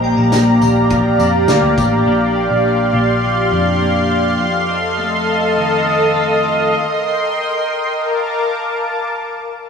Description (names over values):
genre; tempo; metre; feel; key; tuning
dream pop; 103 BPM; 4/4; straight; Bb major; A4 = 441 Hz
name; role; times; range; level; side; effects
lush unison pad; sustained chords; 0.0-9.0 s; G4 to D6; -15 LUFS; equal; chorus
twelve-string electric guitar; arpeggios; 0.0-6.8 s; F2 to G4; -18 LUFS; left 2 dB; lush chorus, digital delay
vintage muted picked electric bass; bass; 0.0-4.4 s; A1 to F2; -19 LUFS; equal; none
shimmering bell with halo; texture; 0.0-0.6 s; G5; -31 LUFS; equal; none
loose indie drum kit; drums; 0.3-1.9 s; kick drum, snare drum, tambourine, toms; -22 LUFS; equal; none
room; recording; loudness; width
moderate lush hall reverb, RT60 2.6 s; rough home demo mix; -13 LUFS; side -6 dB against mid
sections
0.0-9.1 A section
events
none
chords
0.0 Bb6; 4.4 F7; 6.7 Eb6; 7.9 Bbmaj7